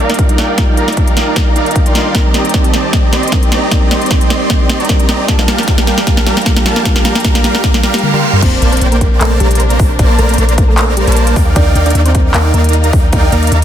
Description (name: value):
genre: future bass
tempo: 153 BPM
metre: 4/4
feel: swing 53% on 16ths, half-time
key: Bb major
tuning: A4 = 439 Hz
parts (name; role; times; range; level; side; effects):
- mellow tine electric piano; accompaniment; 0.0-8.4 s; G3 to A5; -20 LUFS; moving between left 1 dB and right 7 dB; auto-pan, sidechain pumping, ping-pong delay
- clear studio string section; sustained chords; 0.0-13.6 s; C3 to D5; -25 LUFS; left 2 dB; none
- supersaw chords; riff; 0.0-13.6 s; G3 to C6; -15 LUFS; right 1 dB; sidechain pumping, low-pass filter, ping-pong delay
- warm 808-style bass; bass; 0.0-13.6 s; Bb1 to Eb2; -12 LUFS; equal; tube saturation, sidechain pumping, high-pass filter
- trap drum kit; drums; 0.1-13.6 s; crash cymbal, handclaps, hi-hat, snare drum, toms; -16 LUFS; equal; small room ambience
- electronic kick drum; drums; 0.2-13.2 s; none; -12 LUFS; equal; small room ambience
- reverse cymbal and impact; sound effects; 7.8-10.0 s; none; -23 LUFS; right 3 dB; none
- thumb-piano-like synth pluck; melody; 8.4-13.5 s; G3 to D5; -20 LUFS; right 1 dB; chorus, sidechain pumping, dub echo
room: light reverb, digital ambience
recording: dense, heavily limited modern master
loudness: -9 LUFS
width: side -10 dB against mid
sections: 0.0-8.4 A section; 8.4-13.6 B section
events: build-up 0.0-8.4; drum fill 0.0-8.0, 8.0-8.4; reverse cymbal 7.8-8.4; drop 8.4-13.6; impact 8.4-10.0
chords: 0.0 Ebmaj7; 2.1 Cm7; 5.3 Gm7; 8.4 Bbmaj9; 11.4 Ebmaj7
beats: 0.19 | 0.58 0.97 1.36 1.76 | 2.15 2.54 2.93 3.33 | 3.72 4.11 4.50 4.89 | 5.29 5.68 6.07 6.46 | 6.86 7.25 7.64 8.03 | 8.42 8.81 9.21 9.60 | 9.99 10.38 10.78 11.17 | 11.56 11.95 12.35 12.74 | 13.13 13.52